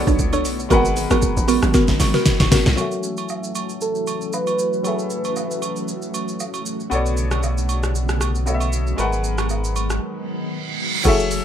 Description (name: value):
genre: amapiano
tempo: 116 BPM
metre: 4/4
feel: swing 55% on 16ths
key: F# minor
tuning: A4 = 443 Hz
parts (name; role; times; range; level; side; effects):
- bright grand piano; accompaniment; 0.0-11.4 s; F#3 to G#5; -27 LUFS; left 4 dB; low-pass filter
- string machine, cellos; sustained chords; 0.0-11.4 s; C#3 to F#4; -28 LUFS; equal; ensemble chorus, low-pass filter
- hollow log drum bass; bass; 0.0-2.8, 11.1-11.4 s; F#1 to C#2; -21 LUFS; equal; none
- mallet-like synth pluck; stabs; 0.1-2.8, 11.0-11.2 s; B3 to C#5; -21 LUFS; right 2 dB; chorus, phaser, digital delay
- deep house drum kit; drums; 0.1-11.4 s; crash cymbal, hi-hat, kick drum, rim click, shaker, snare drum; -22 LUFS; equal; none
- agogo bells and woodblock; percussion; 0.3-11.2 s; none; -31 LUFS; right 8 dB; none
- soft struck synth lead; melody; 3.8-6.7 s; A4 to B4; -24 LUFS; right 1 dB; chorus, low-pass filter, digital delay
- sub bass with octave; bass; 6.9-10.0 s; G#1 to B1; -21 LUFS; equal; none
- reverse cymbal; sound effects; 10.4-11.1 s; none; -26 LUFS; right 8 dB; none
room: light reverb, digital ambience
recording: rough home demo mix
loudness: -18 LUFS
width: side -9 dB against mid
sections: 0.0-2.8 A section; 2.8-11.1 B section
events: drop 0.0-2.8; drum fill 1.7-2.8; filter sweep 2.8-11.1; break 10.0-11.1; reverse cymbal 10.4-11.1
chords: 0.0 Bm9; 0.7 G#m9; 2.8 F#m9; 6.9 Bm9; 9.0 G#m9